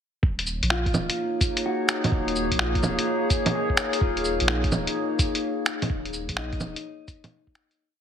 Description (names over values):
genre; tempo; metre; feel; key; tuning
future garage; 127 BPM; 4/4; swing 67% on 16ths; Eb minor; A4 = 440 Hz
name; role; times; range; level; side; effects
warbly tape-like pad; sustained chords; 0.6-7.8 s; Bb3 to Db5; -28 LUFS; left 1 dB; chorus, built-in reverb, vintage 12-bit sampler grit, sidechain pumping
warm sub bass; bass; 0.2-6.8 s; Eb1 to Bb1; -30 LUFS; equal; sidechain pumping
electronic kick drum; drums; 0.2-7.5 s; none; -26 LUFS; equal; none
lo-fi sampler-style drum kit; drums; 0.4-7.8 s; bongos, cabasa, finger snaps, hi-hat; -26 LUFS; right 1 dB; none
mellow electric guitar; accompaniment; 0.7-8.0 s; Eb4 to Ab4; -31 LUFS; left 2 dB; vintage 12-bit sampler grit, sidechain pumping, tape echo
room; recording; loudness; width
moderate lush hall reverb, RT60 1.6 s; heavily compressed radio sound, multiband compression; -22 LUFS; side -8 dB against mid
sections
0.2-7.8 chorus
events
fade-out 5.3-7.8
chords
0.2 Ebm7; 4.0 Eb9sus4